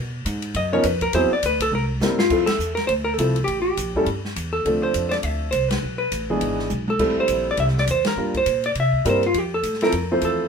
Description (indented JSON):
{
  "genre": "jazz, small-group swing and bop",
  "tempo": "205 BPM",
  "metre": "4/4",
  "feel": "swing 60% on 8ths",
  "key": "F major",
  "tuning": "A4 = 440 Hz",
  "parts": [
    { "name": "upright bass", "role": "bass", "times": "0.0-10.5 s", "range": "G#1 to C3", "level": "-26 LUFS", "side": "equal", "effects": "none" },
    { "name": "open jazz drum kit", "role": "drums", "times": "0.3-10.3 s", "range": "crash cymbal, hi-hat, kick drum, ride cymbal, snare drum, toms", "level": "-29 LUFS", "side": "left 1 dB", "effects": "none" },
    { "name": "vintage hollow-body jazz guitar", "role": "melody", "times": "0.6-10.5 s", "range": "F4 to E5", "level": "-22 LUFS", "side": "equal", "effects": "none" },
    { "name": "warm grand piano", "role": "accompaniment", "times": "0.7-10.5 s", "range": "E3 to C5", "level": "-23 LUFS", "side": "equal", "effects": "none" }
  ],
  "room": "light reverb",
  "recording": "minimal, uncompressed stereo recording",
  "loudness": "-19 LUFS",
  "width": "side -6 dB against mid",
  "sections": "0.0-2.3 A section; 2.3-10.5 B section",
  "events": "hollow-body jazz guitar solo 0.0-2.3; drum fill 1.7-2.3, 6.7; band accent 2.5, 5.7, 8.0",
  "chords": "0.0 Cb5; 1.1 Ab7alt; 1.7 C7; 2.3 Fmaj7; 3.5 A7(no3); 4.7 Dm7; 5.8 Eadd11; 6.4 E7; 7.0 Am7; 8.2 Gm7; 8.8 C7; 9.3 Fmaj7"
}